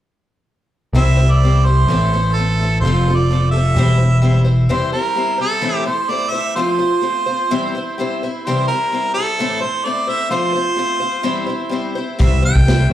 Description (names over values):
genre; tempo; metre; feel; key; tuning
folk rock and heartland rock; 128 BPM; 4/4; straight; C major; A4 = 440 Hz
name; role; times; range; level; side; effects
picked twelve-string acoustic guitar; accompaniment; 0.9-12.9 s; A2 to C5; -21 LUFS; left 3 dB; plate reverb, slapback echo
picked electric bass; bass; 0.9-4.7, 12.2-12.9 s; E1 to C2; -13 LUFS; equal; none
clear harmonica; melody; 1.0-12.9 s; A4 to G5; -20 LUFS; right 3 dB; plate reverb, slapback echo, tape echo
vintage drum kit; drums; 12.2-12.8 s; hi-hat, kick drum, snare drum; -15 LUFS; equal; none
room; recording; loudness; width
light reverb; live gig heard through the venue's PA, club reverb; -14 LUFS; side -12 dB against mid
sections
0.9-4.7 A section; 4.7-12.9 B section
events
none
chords
0.9 C; 1.9 Am; 2.8 F; 3.7 C/E; 4.7 C; 5.6 Am; 6.6 F; 7.5 C/E; 8.4 C; 9.4 Am; 10.3 F; 11.3 C/E; 12.2 C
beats
| 0.94 1.41 1.87 2.34 | 2.81 3.28 3.75 4.21 | 4.68 5.15 5.62 6.09 | 6.56 7.03 7.50 7.97 | 8.44 8.91 9.38 9.85 | 10.32 10.79 11.26 11.73 | 12.20 12.67